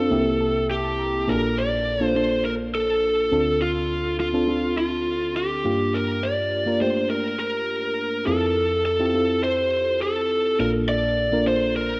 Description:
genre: pop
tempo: 103 BPM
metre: 4/4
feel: straight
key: unclear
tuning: A4 = 440 Hz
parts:
  - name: lead guitar through a small cranked amp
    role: melody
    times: 0.0-12.0 s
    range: F4 to D5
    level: -25 LUFS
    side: equal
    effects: overdrive
  - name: mellow FM electric piano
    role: accompaniment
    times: 0.0-12.0 s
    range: Bb1 to Bb5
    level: -27 LUFS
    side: equal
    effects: chorus
room: moderate lush hall reverb, RT60 2.9 s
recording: dark, warm production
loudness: -23 LUFS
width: mono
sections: 0.0-1.3 A section; 1.3-12.0 B section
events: FM electric piano fill 0.0-1.3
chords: 0.1 C7; 1.3 Bbmaj7; 3.3 Dm7; 5.7 Gm7; 8.3 Fmaj7; 10.6 Bbmaj7

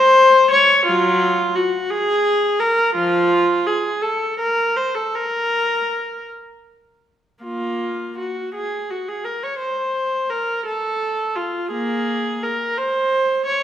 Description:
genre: classical, baroque-style suite movement for unaccompanied viola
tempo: 51-58 BPM (dotted quarters)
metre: 6/8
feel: rubato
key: Bb minor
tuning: A4 = 440 Hz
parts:
  - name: warm viola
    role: solo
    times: 0.0-13.6 s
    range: F3 to Db5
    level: -17 LUFS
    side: equal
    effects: none
room: wet recital hall reverb, RT60 1.4 s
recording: recorded in a church or concert hall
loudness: -17 LUFS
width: side -10 dB against mid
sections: 0.0-7.4 A section; 7.4-13.6 A section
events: none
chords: none

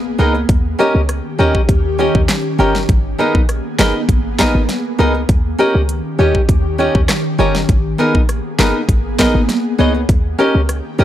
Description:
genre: dancehall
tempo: 100 BPM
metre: 4/4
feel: straight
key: G# harmonic minor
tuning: A4 = 440 Hz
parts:
  - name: ethereal airy pad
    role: sustained chords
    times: 0.0-11.0 s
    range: D#3 to G#4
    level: -22 LUFS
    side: left 1 dB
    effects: ensemble chorus, built-in reverb, sidechain pumping
  - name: impact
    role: sound effects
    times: 0.0-0.5 s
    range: none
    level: barely audible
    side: none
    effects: none
  - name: warm baby grand piano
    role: accompaniment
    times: 0.2-11.0 s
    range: B3 to C#5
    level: -19 LUFS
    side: right 4 dB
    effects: none
  - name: nylon-string guitar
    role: arpeggios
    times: 0.2-11.0 s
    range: B3 to D#5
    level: -17 LUFS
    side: left 3 dB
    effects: none
  - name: short 808-style bass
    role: bass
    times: 0.2-11.0 s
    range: G1 to D#2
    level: -16 LUFS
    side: equal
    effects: none
  - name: pop drum kit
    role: drums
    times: 0.5-10.8 s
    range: handclaps, hi-hat, kick drum, rim click, snare drum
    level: -16 LUFS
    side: equal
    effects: none
room: little or no reverb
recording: dry, gritty hardware recording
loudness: -12 LUFS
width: side -12 dB against mid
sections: 0.0-11.0 A section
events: impact 0.0-0.5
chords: 0.5 D#7; 2.9 G#madd9; 5.3 D#7; 7.7 G#madd9; 10.1 D#7

